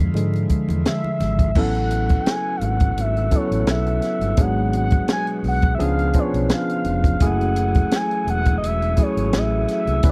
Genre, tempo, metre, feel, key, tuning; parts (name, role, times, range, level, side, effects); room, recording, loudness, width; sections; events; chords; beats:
lush 1970s-style soul; 85 BPM; 4/4; swing 54% on 16ths; A major; A4 = 440 Hz
tine electric piano; accompaniment; 0.0-10.1 s; D3 to B4; -26 LUFS; equal
overdriven tonewheel organ; sustained chords; 0.0-10.1 s; B2 to G#4; -37 LUFS; equal; slow rotary speaker
overdriven fingered electric bass; bass; 0.0-10.1 s; E1 to G#2; -25 LUFS; equal
congas; percussion; 0.1-1.4 s; -35 LUFS; equal
compact cocktail drum kit; drums; 0.2-10.1 s; crash cymbal, hi-hat, kick drum, snare drum; -21 LUFS; equal
expressive synth lead; melody; 0.9-10.1 s; C#5 to G#5; -28 LUFS; equal; chorus
studio reverb; dry, close 1970s-style studio recording; -20 LUFS; mono
0.0-1.6 A section; 1.6-10.1 B section
tine electric piano solo 0.0-1.6
0.0 E7b9; 1.6 A69; 4.4 G#m7b5; 5.8 C#7b9; 7.2 F#m9
0.14 0.85 | 1.56 2.26 2.97 3.68 | 4.39 5.09 5.80 6.51 | 7.21 7.92 8.63 9.33 | 10.04